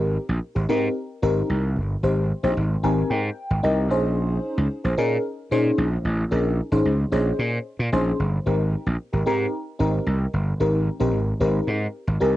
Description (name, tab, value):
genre	funk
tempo	112 BPM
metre	4/4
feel	straight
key	unclear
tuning	A4 = 444 Hz
part	FM electric piano with soft pad layer	accompaniment	0.0-12.4 s	C4 to Ab5	-24 LUFS	left 1 dB	chorus, phaser
part	gritty slap bass	bass	0.0-12.4 s	G1 to Bb2	-22 LUFS	equal	overdrive
room	light reverb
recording	home recording on cassette, nothing above 10.3 kHz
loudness	-20 LUFS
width	side -14 dB against mid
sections	0.0-12.4 A section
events	FM electric piano fill 2.6-4.2, 11.9-12.4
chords	0.0 Abmaj7; 3.9 Bbm11; 8.5 Abmaj7